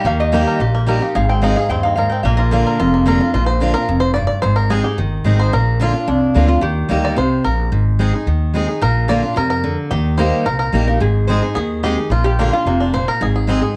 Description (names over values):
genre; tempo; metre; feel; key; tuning
bluegrass; 219 BPM; 4/4; straight; Bb mixolydian; A4 = 437 Hz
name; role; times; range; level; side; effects
bluegrass banjo; melody; 0.0-13.8 s; Bb3 to D5; -24 LUFS; equal; cassette tape, plate reverb
lap resonator guitar; second line; 0.0-2.9, 6.1-7.0, 10.9-12.8 s; D4 to G5; -23 LUFS; equal; cassette tape, plate reverb
picked steel-string acoustic guitar; accompaniment; 0.0-13.8 s; F2 to Ab4; -20 LUFS; equal; cassette tape
upright bass; bass; 0.0-13.6 s; F1 to F2; -20 LUFS; equal; none
room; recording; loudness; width
moderate small room reverb, RT60 0.6 s; home recording on cassette; -16 LUFS; mono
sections
0.0-3.3 A section; 3.3-13.8 A section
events
resonator guitar played with a steel bar solo 0.0-3.3; five-string banjo solo 3.3-13.8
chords
0.0 Eb; 1.1 Ab; 2.2 Bb; 4.4 Ab; 5.5 Bb; 6.6 Eb; 7.7 Ab; 8.8 Bb; 9.9 Eb; 11.0 Ab; 12.1 Bb; 13.2 Ab